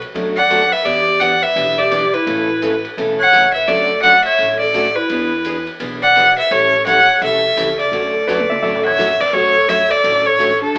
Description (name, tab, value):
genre	country, western swing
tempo	170 BPM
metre	4/4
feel	swing 62% on 8ths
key	D major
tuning	A4 = 440 Hz
part	rich fiddle	melody	0.0-10.8 s	A4 to F#5	-16 LUFS	equal	none
part	breathy clarinet	second line	0.0-10.8 s	D4 to D5	-23 LUFS	equal	none
part	vintage drum kit	drums	0.0-10.8 s	crash cymbal, hi-hat, kick drum, ride cymbal, snare drum, toms	-32 LUFS	equal	none
part	picked steel-string acoustic guitar	accompaniment	0.1-10.8 s	B2 to A4	-25 LUFS	equal	none
part	upright bass	bass	0.1-10.8 s	A1 to F#2	-37 LUFS	equal	none
part	clean lap steel guitar	second line	8.3-9.3 s	B4 to F#5	-24 LUFS	equal	none
room	wet studio reverb, RT60 0.7 s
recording	band playing live in one room, AM radio sound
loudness	-14 LUFS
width	mono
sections	0.0-9.3 A section; 9.3-10.8 A section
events	drum fill 8.3-9.0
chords	0.0 Bm7; 0.9 Em7; 2.3 A; 3.7 Dmaj7; 5.1 E7; 6.5 A7; 7.9 Dmaj7